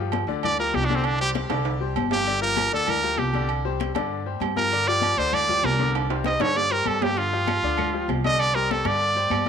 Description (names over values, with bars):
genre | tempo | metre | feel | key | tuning
latin, salsa | 196 BPM | 4/4 | straight | G minor | A4 = 440 Hz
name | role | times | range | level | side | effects
bright upright piano | accompaniment | 0.0-9.5 s | D3 to D5 | -30 LUFS | left 11 dB | none
upright bass | bass | 0.0-9.5 s | G1 to G2 | -28 LUFS | right 1 dB | none
agogo bells and timbales | percussion | 0.1-9.5 s | none | -30 LUFS | right 15 dB | none
congas | percussion | 0.1-9.5 s | none | -31 LUFS | left 12 dB | none
brilliant trumpet | melody | 0.4-9.5 s | C4 to Eb5 | -23 LUFS | right 2 dB | none
claves | percussion | 7.5-9.5 s | none | -38 LUFS | left 12 dB | none
room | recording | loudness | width
light reverb | 1960s-style stereo with parts hard left and right | -21 LUFS | side -7 dB against mid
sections
0.0-9.5 A section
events
trumpet solo 0.0-9.5; drum fill 1.5-2.3, 5.9-7.2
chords
0.0 Gm7; 3.5 G5